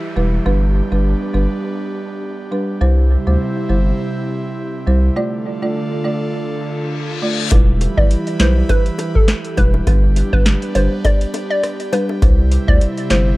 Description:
dancehall; 102 BPM; 4/4; swing 56% on 16ths; E phrygian; A4 = 440 Hz
airy breathy pad; sustained chords; 0.0-13.4 s; C3 to B4; -25 LUFS; equal; chorus, sidechain pumping
downlifter and reverse cymbal; sound effects; 0.0-2.8, 6.7-7.5 s; -29 LUFS; left 5 dB
folk marimba with medium mallets; accompaniment; 0.2-13.3 s; G3 to D5; -22 LUFS; right 1 dB; sidechain pumping, analog delay
saturated sub bass; bass; 0.2-13.3 s; E1 to D2; -15 LUFS; equal
booming analog drum machine; drums; 7.5-13.3 s; handclaps, hi-hat, kick drum, rim click, snare drum; -14 LUFS; equal
bongos; percussion; 7.5-13.3 s; -29 LUFS; left 4 dB; analog delay
hollow square pluck; melody; 8.0-13.3 s; A4 to D5; -22 LUFS; equal; chorus, analog delay
digital ambience; echo-heavy mix; -14 LUFS; side -19 dB against mid
0.0-7.5 A section; 7.5-13.4 B section
break 5.2-7.5; reverse cymbal 6.7-7.5
0.5 G; 2.8 C; 5.2 Dm; 7.5 Em; 9.9 G; 12.2 C

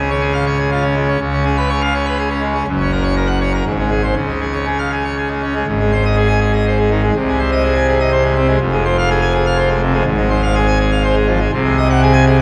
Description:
classical, organ toccata; 123 BPM; 3/4; straight; Db major, Ab major from 5.7 s; A4 = 443 Hz
pipe organ, full organ; solo; 0.0-12.4 s; F1 to Ab5; -16 LUFS; equal
wet church reverb, RT60 3.1 s; dark, warm production; -16 LUFS; mono
0.0-5.7 A section; 5.7-12.4 B section
0.0 Db; 1.2 Db7; 2.7 Gb; 3.7 Ab; 4.2 Db; 5.7 Ab; 7.2 Ab/C; 8.6 Fm; 10.1 Fm/Ab; 11.5 Ab7/C

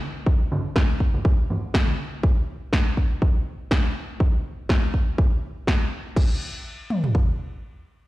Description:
filtered disco house; 122 BPM; 4/4; swing 55% on 16ths
tambourine and congas; percussion; 0.0-2.2 s; -29 LUFS; right 1 dB; sidechain pumping on perc, low-pass filter on perc
house drum kit; drums; 0.3-7.3 s; kick drum, toms; -20 LUFS; equal
punchy analog drum machine; drums; 0.8-6.3 s; crash cymbal, snare drum; -29 LUFS; left 1 dB; sidechain pumping on hats, sidechain pumping on perc, sidechain pumping on cymbals
light reverb; played on a big sound system in a bare room, stone room reverb; -20 LUFS; side -18 dB against mid
0.0-6.2 A section; 6.2-8.1 B section

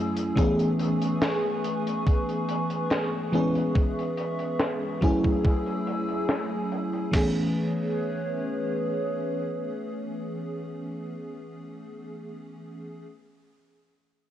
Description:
vaporwave; 71 BPM; 4/4; straight; A major; A4 = 441 Hz
FM electric piano with soft pad layer; accompaniment; 0.0-13.0 s; E3 to G#4; -28 LUFS; equal; tremolo, analog chorus, analog delay
warbly tape-like pad; sustained chords; 0.0-11.3 s; F#3 to E6; -32 LUFS; equal; chorus, built-in reverb, vintage 12-bit sampler grit
crisp fusion drum kit; drums; 0.2-7.1 s; hi-hat, snare drum; -32 LUFS; equal; low-pass filter on hats, low-pass filter on snare, low-pass filter on room
detuned 8-bit digital drum machine; drums; 0.4-7.3 s; crash cymbal, kick drum, snare drum; -24 LUFS; equal
light reverb, studio ambience; worn, warbling old tape, cassette tape, warbly pitch drift; -24 LUFS; side -11 dB against mid
0.0-7.1 A section; 7.1-10.5 B section
filter sweep on drum 0.0-7.1
0.4 Amaj9; 3.3 C#m7; 5.0 F#m9; 7.1 Amaj9

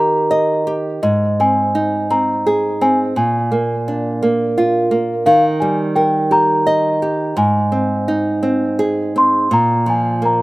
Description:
children's music, lullaby; 56 BPM (dotted quarters); 6/8; straight; Ab major; A4 = 439 Hz
celesta; melody; 0.0-10.4 s; Eb5 to C6; -16 LUFS; equal
nylon-string guitar; accompaniment; 0.0-10.4 s; Ab2 to Eb5; -16 LUFS; right 1 dB; slapback echo
little or no reverb; recorded outdoors, with no room sound; -14 LUFS; side -20 dB against mid
0.0-9.5 A section
0.0 Eb; 1.0 Abadd9; 3.2 Bb; 5.3 Eb; 7.4 Ab; 9.5 Bb5

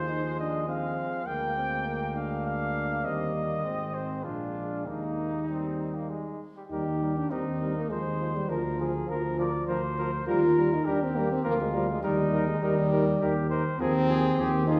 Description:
classical, brass quintet; 101 BPM; 3/4; straight; Eb major; A4 = 440 Hz
warm cornet; melody; 0.0-14.8 s; Eb4 to G5; -38 LUFS; equal
clear flugelhorn; second line; 0.0-14.8 s; G3 to D5; -38 LUFS; equal
clear trombone; accompaniment; 0.0-14.8 s; Eb3 to Eb4; -38 LUFS; equal
mellow French horn; accompaniment; 0.0-14.8 s; F3 to F4; -32 LUFS; equal
mellow tuba; bass; 0.0-14.8 s; Ab1 to Eb2; -35 LUFS; equal
wet recital hall reverb, RT60 1.6 s; recorded in a church or concert hall; -29 LUFS; mono
0.0-6.7 A section; 6.7-14.8 B section
0.0 Fm7/Eb; 1.3 Bb7/D; 3.0 Eb; 3.6 Ab; 4.2 Bb7; 4.9 Eb; 7.9 Fm7/Eb; 8.5 Bb/D; 10.3 Eb; 11.4 Bb/D; 12.0 Eb; 13.8 Fm7/Eb

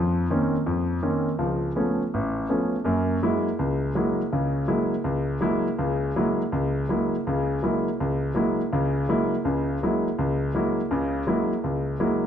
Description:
jazz; 164 BPM; 4/4; swing 66% on 8ths; F# mixolydian; A4 = 441 Hz
warm grand piano; solo; 0.0-12.3 s; A1 to E4; -22 LUFS; equal
wet large studio reverb, RT60 1.4 s; dark, warm production; -22 LUFS; side -9 dB against mid
0.0-2.9 A section; 2.9-12.3 B section
0.0 Bbmadd9; 1.4 Dbaug7; 2.9 F#9

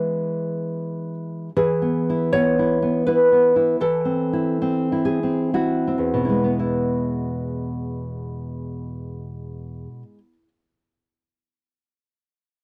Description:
romantic piece for solo classical guitar; 55-84 BPM; 3/4; rubato; E major; A4 = 439 Hz
nylon-string guitar; solo; 0.0-10.5 s; E2 to E5; -22 LUFS; equal
moderate booth ambience, RT60 0.2 s; dry, close 1970s-style studio recording; -21 LUFS; mono
0.0-1.6 A section; 1.6-6.6 B section; 6.6-12.6 C section
slowing down 0.5-6.6
0.0 E; 3.8 Am/E; 6.6 E

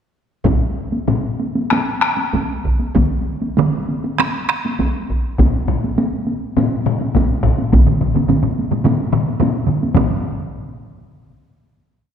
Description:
japanese traditional, taiko drum ensemble; 95-118 BPM; 4/4; straight
taiko ensemble; percussion; 0.4-10.4 s; -20 LUFS; left 4 dB
taiko ensemble; percussion; 0.4-10.2 s; -18 LUFS; equal
taiko ensemble; percussion; 0.5-10.2 s; -20 LUFS; right 1 dB
taiko ensemble; percussion; 3.0-10.4 s; -20 LUFS; right 4 dB
wet concert hall reverb, RT60 2.0 s; -15 LUFS; side -8 dB against mid
0.4-9.9 A section; 9.9-12.0 final hit
speeding up 0.4-12.0

